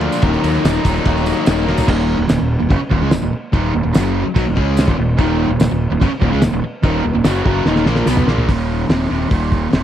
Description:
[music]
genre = classic rock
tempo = 145 BPM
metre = 4/4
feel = straight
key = Eb minor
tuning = A4 = 439 Hz
[part]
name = biting overdriven guitar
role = riff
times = 0.0-9.8 s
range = Eb2 to F4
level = -21 LUFS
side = right 8 dB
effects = spring reverb
[part]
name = biting overdriven guitar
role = riff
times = 0.0-1.9, 5.2-8.5 s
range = Eb2 to F4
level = -22 LUFS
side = equal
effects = none
[part]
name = crunchy overdriven guitar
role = riff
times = 0.0-9.8 s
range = Eb2 to F4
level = -21 LUFS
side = left 10 dB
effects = none
[part]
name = fuzz fingered electric bass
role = bass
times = 0.0-9.8 s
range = Eb1 to Eb2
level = -20 LUFS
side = equal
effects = overdrive
[part]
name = cloth-damped thuddy drum kit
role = drums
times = 0.0-9.8 s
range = crash cymbal, hi-hat, kick drum, ride cymbal, snare drum, toms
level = -18 LUFS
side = equal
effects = none
[part]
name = tambourine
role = percussion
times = 0.1-8.2 s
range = none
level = -37 LUFS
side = right 6 dB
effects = none
[sound]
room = little or no reverb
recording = dry, close 1970s-style studio recording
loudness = -14 LUFS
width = side -10 dB against mid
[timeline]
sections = 0.0-1.9 A section; 1.9-8.5 B section; 8.5-9.8 C section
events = drum fill 1.7, 7.7-8.5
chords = 0.2 Ebm; 8.5 Eb5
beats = | 0.22 0.64 1.05 1.46 | 1.88 2.29 2.70 3.12 | 3.53 3.94 4.36 4.77 | 5.18 5.59 6.01 6.42 | 6.83 7.25 7.66 8.07 | 8.49 8.90 9.32 9.73

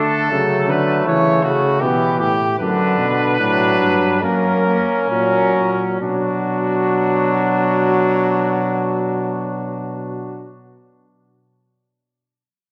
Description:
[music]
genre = classical, imitative canzona for brass ensemble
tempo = 64-82 BPM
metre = 4/4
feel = straight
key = B minor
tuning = A4 = 441 Hz
[part]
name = mellow trumpet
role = melody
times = 0.0-10.5 s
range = F#4 to C#5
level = -24 LUFS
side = equal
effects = none
[part]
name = mellow trumpet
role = second line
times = 0.0-10.5 s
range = A3 to D4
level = -24 LUFS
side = equal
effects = none
[part]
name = bright trombone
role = accompaniment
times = 0.0-10.5 s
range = C#3 to A#3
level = -22 LUFS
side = equal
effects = none
[part]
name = warm bass trombone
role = bass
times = 0.0-10.5 s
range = F#2 to E3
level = -25 LUFS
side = equal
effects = none
[sound]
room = wet scoring stage reverb, RT60 2.0 s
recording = none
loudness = -18 LUFS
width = mono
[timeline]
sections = 0.0-6.0 A section; 6.0-9.7 B section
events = slowing down 0.0-6.0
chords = 0.0 D; 1.1 C#dim; 2.6 Bm/F#; 4.2 F#; 6.0 Bm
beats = 0.33 1.07 1.82 | 2.60 3.40 4.24 5.11 | 6.02 6.95 7.88 8.81

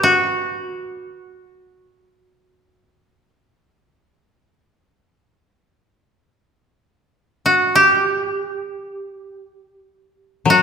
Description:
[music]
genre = japanese traditional, Japanese chamber music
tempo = free time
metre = none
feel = none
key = unclear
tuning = A4 = 437 Hz
[part]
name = koto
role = melody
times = 0.0-10.6 s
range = F#4 to B4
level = -16 LUFS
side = equal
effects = none
[part]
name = koto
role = accompaniment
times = 10.5-10.6 s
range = F#3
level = -14 LUFS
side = left 6 dB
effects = none
[sound]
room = wet recital hall reverb, RT60 1.8 s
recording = recorded in a church or concert hall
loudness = -16 LUFS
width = side -6 dB against mid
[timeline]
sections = 0.0-10.6 A section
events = slowing down 5.3-10.6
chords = none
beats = free time

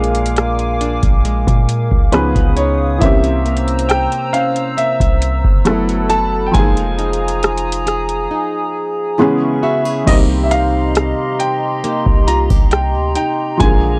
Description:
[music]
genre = contemporary R&B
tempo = 68 BPM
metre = 4/4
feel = straight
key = C minor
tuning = A4 = 439 Hz
[part]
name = warm baby grand piano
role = melody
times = 0.0-14.0 s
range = Cb5 to Bb5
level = -23 LUFS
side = equal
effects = tape echo
[part]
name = felt-muted upright piano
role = accompaniment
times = 0.0-14.0 s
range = D3 to A4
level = -22 LUFS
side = equal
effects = none
[part]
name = hollow soft pad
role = sustained chords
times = 0.0-14.0 s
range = G4 to E6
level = -25 LUFS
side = equal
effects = chorus
[part]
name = nylon-string guitar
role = arpeggios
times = 0.0-14.0 s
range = Bb2 to A4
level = -26 LUFS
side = equal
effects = none
[part]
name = warm 808-style bass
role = bass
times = 0.0-14.0 s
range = F1 to Bb2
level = -21 LUFS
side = equal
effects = none
[part]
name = booming analog drum machine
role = drums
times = 0.0-13.8 s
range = crash cymbal, hi-hat, kick drum, rim click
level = -18 LUFS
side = equal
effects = none
[sound]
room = light reverb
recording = dry, gritty hardware recording, transformer saturation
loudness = -15 LUFS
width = mono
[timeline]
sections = 0.0-10.1 A section; 10.1-14.0 B section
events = none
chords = 0.0 Bb7; 2.1 Db9; 3.0 C7b9; 5.7 F#m7; 6.5 Fm7; 9.2 Dbm7; 10.1 Cm7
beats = 0.37 1.25 2.13 | 3.02 3.90 4.78 5.66 | 6.54 7.43 8.31 9.19 | 10.07 10.96 11.84 12.72 | 13.60

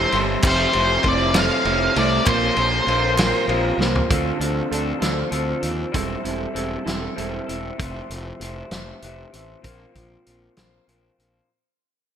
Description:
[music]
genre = indie rock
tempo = 65 BPM (dotted quarters)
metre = 6/8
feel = straight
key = D minor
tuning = A4 = 440 Hz
[part]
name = octave-fuzz lead guitar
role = melody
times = 0.0-3.4 s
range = C5 to F5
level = -20 LUFS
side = equal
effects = distortion, ping-pong delay
[part]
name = electric guitar through a small old amp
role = riff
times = 0.0-11.5 s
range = F2 to A4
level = -26 LUFS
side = left 3 dB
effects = wide subtle chorus
[part]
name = mellow electric guitar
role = riff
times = 0.0-7.6 s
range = E2 to Bb4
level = -28 LUFS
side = right 8 dB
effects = analog chorus, ping-pong delay
[part]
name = fuzz fingered electric bass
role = bass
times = 0.0-11.4 s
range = E1 to Eb2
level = -26 LUFS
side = equal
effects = overdrive
[part]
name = loose indie drum kit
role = drums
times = 0.1-11.3 s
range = crash cymbal, hi-hat, kick drum, ride cymbal, snare drum, toms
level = -24 LUFS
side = equal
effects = gated reverb
[part]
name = group handclap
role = percussion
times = 0.1-3.6 s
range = none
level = -35 LUFS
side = right 2 dB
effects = none
[sound]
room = moderate lush hall reverb, RT60 1.6 s, small room ambience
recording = bright 1980s-style digital production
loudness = -18 LUFS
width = side -8 dB against mid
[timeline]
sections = 0.0-4.1 A section; 4.1-11.5 B section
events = drum fill 3.8-4.1; fade-out 4.1-11.5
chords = 0.4 Fmaj7; 2.3 Bbsus2; 4.1 Dm7; 5.9 Am7/E; 7.8 Fmaj7; 9.7 Bbsus2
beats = | 0.43 1.34 | 2.26 3.18 | 4.10 5.02 | 5.94 6.87 | 7.79 8.72 | 9.65 10.58

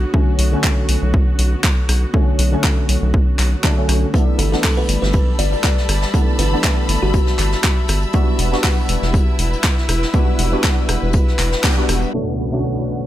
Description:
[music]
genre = deep house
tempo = 120 BPM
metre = 4/4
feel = swing 54% on 16ths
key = B minor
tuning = A4 = 442 Hz
[part]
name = percussive organ stab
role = stabs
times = 0.0-13.1 s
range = B2 to C#5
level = -23 LUFS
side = equal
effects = ensemble chorus, sidechain pumping, digital delay
[part]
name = rubbery square bass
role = bass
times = 0.0-12.1 s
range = E1 to B1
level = -18 LUFS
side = equal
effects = sidechain pumping
[part]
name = rich studio string section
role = texture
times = 0.0-13.1 s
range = G3 to B5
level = -28 LUFS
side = left 1 dB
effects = sidechain pumping
[part]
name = electronic kick drum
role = drums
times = 0.1-11.7 s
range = none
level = -17 LUFS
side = equal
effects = none
[part]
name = deep house drum kit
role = drums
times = 0.4-12.0 s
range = handclaps, hi-hat, rim click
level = -22 LUFS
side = left 1 dB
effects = low-pass filter on cymbals, low-pass filter on hats, low-pass filter on snare, low-pass filter on room
[part]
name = vintage brush drum kit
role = drums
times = 4.1-12.1 s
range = hi-hat, snare drum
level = -30 LUFS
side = left 2 dB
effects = high-pass filter on hats, high-pass filter on snare, high-pass filter on room
[part]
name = rich chamber violin section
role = texture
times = 4.1-13.1 s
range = E5 to F#6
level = -33 LUFS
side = left 1 dB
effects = none
[part]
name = buzzing kalimba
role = melody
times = 4.4-7.4 s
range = F#4 to D5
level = -27 LUFS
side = left 1 dB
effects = digital delay
[part]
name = hollow soft pad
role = sustained chords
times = 12.1-13.1 s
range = B2 to C#5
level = -27 LUFS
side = left 2 dB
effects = ensemble chorus, sidechain pumping
[part]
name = impact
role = sound effects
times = 12.1-13.1 s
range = none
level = -26 LUFS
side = equal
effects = none
[sound]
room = studio reverb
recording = low-pass filter, faint mains hum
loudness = -14 LUFS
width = side -13 dB against mid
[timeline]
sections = 0.0-12.1 A section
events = band accent 11.6; impact 12.1-13.1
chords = 0.0 Bm7; 4.1 G6; 8.1 Em9; 12.1 Bm7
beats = | 0.14 0.64 1.14 1.64 | 2.14 2.64 3.14 3.64 | 4.14 4.64 5.14 5.64 | 6.14 6.64 7.14 7.64 | 8.14 8.64 9.14 9.64 | 10.14 10.64 11.14 11.64 | 12.14 12.64

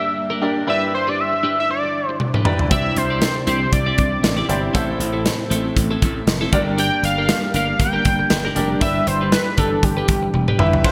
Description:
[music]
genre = 1980s-style pop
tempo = 118 BPM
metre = 4/4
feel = swing 55% on 16ths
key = unclear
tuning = A4 = 441 Hz
[part]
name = octave-doubled lead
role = melody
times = 0.0-10.9 s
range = G4 to G5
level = -24 LUFS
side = equal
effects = chorus
[part]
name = clear baby grand piano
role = accompaniment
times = 0.0-10.9 s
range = G2 to E5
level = -28 LUFS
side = equal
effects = lush chorus
[part]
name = string machine, full ensemble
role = sustained chords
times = 0.0-10.9 s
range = C3 to A4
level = -30 LUFS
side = equal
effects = ensemble chorus
[part]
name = twelve-string electric guitar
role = riff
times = 0.0-10.9 s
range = C4 to D5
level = -30 LUFS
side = equal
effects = subtle chorus
[part]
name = modern studio drum kit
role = drums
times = 2.2-10.9 s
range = crash cymbal, hi-hat, kick drum, snare drum, toms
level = -22 LUFS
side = equal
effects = gated reverb
[part]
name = slap bass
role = bass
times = 2.7-10.9 s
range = E1 to C2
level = -26 LUFS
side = equal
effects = none
[sound]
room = moderate lush hall reverb, RT60 1.7 s, small room reverb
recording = bright 1980s-style digital production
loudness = -19 LUFS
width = mono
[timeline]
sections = 0.0-10.8 A section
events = drum fill 2.2-2.7, 10.3-10.8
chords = 0.0 Gm; 0.7 Em7/G; 2.7 Cadd9; 4.7 Am; 6.5 Gm; 8.8 Em7/G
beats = 0.17 | 0.68 1.19 1.70 2.20 | 2.71 3.22 3.73 4.24 | 4.75 5.25 5.76 6.27 | 6.78 7.29 7.80 8.30 | 8.81 9.32 9.83 10.34 | 10.85

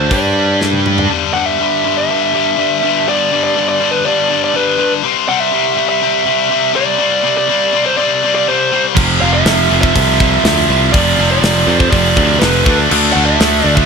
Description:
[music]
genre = hard rock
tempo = 122 BPM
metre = 4/4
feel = straight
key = unclear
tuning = A4 = 439 Hz
[part]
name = biting lead guitar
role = melody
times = 0.0-13.9 s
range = B4 to F#5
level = -16 LUFS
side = right 2 dB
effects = overdrive, tape echo
[part]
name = high-gain distorted guitar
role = riff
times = 0.0-13.9 s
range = F2 to G4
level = -15 LUFS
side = left 12 dB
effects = distortion
[part]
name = scooped high-gain guitar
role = riff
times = 0.0-1.1, 9.0-13.9 s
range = F2 to G4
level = -16 LUFS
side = right 14 dB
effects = distortion
[part]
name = modern bright picked electric bass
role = bass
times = 0.0-1.1, 9.0-13.9 s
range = F1 to G2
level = -16 LUFS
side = equal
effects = none
[part]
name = tight metal drum kit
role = drums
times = 0.1-1.1, 9.0-13.9 s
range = crash cymbal, hi-hat, kick drum, snare drum, toms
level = -17 LUFS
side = equal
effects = none
[part]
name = heavy high-gain guitar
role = riff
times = 9.0-13.9 s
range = F2 to D4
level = -20 LUFS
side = equal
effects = distortion
[sound]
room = light reverb, small room ambience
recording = none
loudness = -10 LUFS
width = side -5 dB against mid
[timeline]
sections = 0.0-1.1 A section; 1.1-13.9 B section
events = drum fill 0.6-1.1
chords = 0.1 G5; 5.0 C; 9.0 F5; 12.7 D5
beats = 0.10 0.60 | 1.10 1.59 2.08 2.58 | 3.07 3.56 4.05 4.54 | 5.04 5.53 6.02 6.51 | 7.00 7.50 7.99 8.48 | 8.97 9.46 9.95 10.45 | 10.94 11.43 11.92 12.41 | 12.90 13.39

